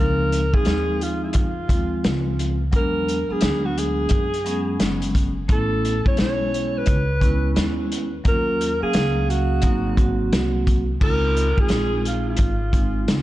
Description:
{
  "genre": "hip hop, jazz-hop",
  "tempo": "87 BPM",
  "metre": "4/4",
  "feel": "swing 64% on 16ths",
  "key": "Db major",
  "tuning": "A4 = 438 Hz",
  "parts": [
    { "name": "breathy alto saxophone", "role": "melody", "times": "0.0-13.2 s", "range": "F4 to C#5", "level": "-26 LUFS", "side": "equal", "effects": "analog delay" },
    { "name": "vibraphone with soft mallets", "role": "accompaniment", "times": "0.0-13.2 s", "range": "F3 to F5", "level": "-25 LUFS", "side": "right 1 dB", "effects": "none" },
    { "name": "upright bass", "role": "bass", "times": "0.0-13.2 s", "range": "F#1 to F#2", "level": "-25 LUFS", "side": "equal", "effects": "none" },
    { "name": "vintage drum kit", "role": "drums", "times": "0.3-13.2 s", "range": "crash cymbal, hi-hat, kick drum, snare drum", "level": "-22 LUFS", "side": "equal", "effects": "vintage 12-bit sampler grit" }
  ],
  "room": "light reverb, small room ambience",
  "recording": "dark, warm production",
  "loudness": "-18 LUFS",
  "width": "side -15 dB against mid",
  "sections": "0.0-11.0 A section; 11.0-13.2 A section",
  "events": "none",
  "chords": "0.0 Dbmaj9; 2.7 E9; 5.5 Amaj9; 8.2 Ebm7; 9.6 Ab7; 11.0 Dbmaj9"
}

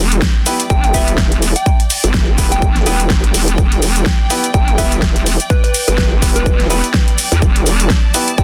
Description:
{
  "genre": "bass house",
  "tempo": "125 BPM",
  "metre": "4/4",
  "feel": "swing 57% on 16ths",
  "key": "E minor",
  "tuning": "A4 = 438 Hz",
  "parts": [
    { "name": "vowel-sweep wobble bass", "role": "bass", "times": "0.0-8.4 s", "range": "E1 to E2", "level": "-18 LUFS", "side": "equal", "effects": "chorus, overdrive, sidechain pumping" },
    { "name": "clear symphonic string section", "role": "texture", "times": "0.0-8.4 s", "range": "D5 to A5", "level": "-29 LUFS", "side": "equal", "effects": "sidechain pumping" },
    { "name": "big-room dance drum kit", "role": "drums", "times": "0.1-8.4 s", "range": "hi-hat, shaker, snare drum", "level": "-20 LUFS", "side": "equal", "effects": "overdrive" },
    { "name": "electronic kick drum", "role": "drums", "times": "0.2-8.4 s", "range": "none", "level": "-16 LUFS", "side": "equal", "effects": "overdrive" },
    { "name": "clear grand piano", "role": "stabs", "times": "0.5-8.3 s", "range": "B3 to B4", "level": "-25 LUFS", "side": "equal", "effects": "sidechain pumping, tape echo" },
    { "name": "soft synth bell", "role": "melody", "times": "0.7-8.4 s", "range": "B4 to G5", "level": "-24 LUFS", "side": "equal", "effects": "chorus, tape echo" }
  ],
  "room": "little or no reverb",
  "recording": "dense, heavily limited modern master",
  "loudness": "-14 LUFS",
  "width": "mono",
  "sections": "0.0-8.4 A section",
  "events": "none",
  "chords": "0.0 Em"
}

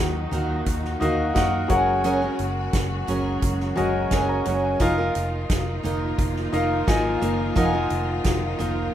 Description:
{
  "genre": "piano-driven pop",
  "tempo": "87 BPM",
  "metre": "4/4",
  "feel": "straight",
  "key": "unclear",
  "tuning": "A4 = 440 Hz",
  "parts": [
    { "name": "warm concert grand piano", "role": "accompaniment", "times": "0.0-8.9 s", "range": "Eb3 to Bb5", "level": "-26 LUFS", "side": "left 2 dB", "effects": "none" },
    { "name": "clear studio string section", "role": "sustained chords", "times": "0.0-8.9 s", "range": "Bb2 to Gb4", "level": "-32 LUFS", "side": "left 2 dB", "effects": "none" },
    { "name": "picked steel-string acoustic guitar", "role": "riff", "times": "0.0-8.9 s", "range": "F3 to Bb4", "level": "-26 LUFS", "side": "right 3 dB", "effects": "none" },
    { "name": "vintage muted fingered electric bass", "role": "bass", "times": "0.0-8.9 s", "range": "F1 to Gb2", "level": "-28 LUFS", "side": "equal", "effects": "none" },
    { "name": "soft-mallet drum kit", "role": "drums", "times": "0.3-8.8 s", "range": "hi-hat, kick drum, snare drum, toms", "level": "-27 LUFS", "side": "equal", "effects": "none" }
  ],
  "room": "moderate plate reverb, RT60 1.7 s, small room ambience",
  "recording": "rough home demo mix",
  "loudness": "-20 LUFS",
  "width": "side -11 dB against mid",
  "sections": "0.0-8.9 A section",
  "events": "none",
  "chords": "0.0 Ebm; 1.7 Gbadd9; 4.8 Bbsus4/F"
}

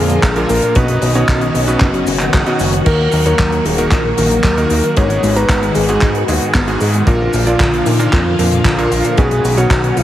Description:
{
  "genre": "italo disco",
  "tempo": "114 BPM",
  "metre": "4/4",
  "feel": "straight",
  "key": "Eb minor",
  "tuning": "A4 = 440 Hz",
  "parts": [
    { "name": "soft octave-layered synth lead", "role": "melody", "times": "0.0-10.0 s", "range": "Eb4 to D#5", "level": "-18 LUFS", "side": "left 1 dB", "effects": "chorus, ping-pong delay" },
    { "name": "phased string machine", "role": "sustained chords", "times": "0.0-10.0 s", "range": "D3 to F#4", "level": "-20 LUFS", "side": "equal", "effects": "ensemble chorus, phaser" },
    { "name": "wide unison pluck", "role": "arpeggios", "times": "0.0-10.0 s", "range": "Eb2 to Ab4", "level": "-22 LUFS", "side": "left 1 dB", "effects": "ping-pong delay" },
    { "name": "bright electric grand piano", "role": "stabs", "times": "0.0-10.0 s", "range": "Ab2 to Bb5", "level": "-20 LUFS", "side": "right 2 dB", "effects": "none" },
    { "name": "fat analog bass", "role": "bass", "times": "0.0-10.0 s", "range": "Eb1 to Bb2", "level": "-18 LUFS", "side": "equal", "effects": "tube saturation" },
    { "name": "tight funk drum kit", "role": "drums", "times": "0.1-10.0 s", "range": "cabasa, crash cymbal, handclaps, hi-hat", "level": "-20 LUFS", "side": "equal", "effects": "none" },
    { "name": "kick drum", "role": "drums", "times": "0.2-9.8 s", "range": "none", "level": "-15 LUFS", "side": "equal", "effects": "none" }
  ],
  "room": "moderate lush hall reverb, RT60 2.3 s",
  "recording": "heavily compressed radio sound, vinyl crackle",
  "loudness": "-11 LUFS",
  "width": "side -12 dB against mid",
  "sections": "0.0-10.0 A section",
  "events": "none",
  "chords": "0.0 Bb; 0.8 Badd9; 2.9 Ebm; 5.0 Abm7; 7.1 Bb; 9.2 Badd9"
}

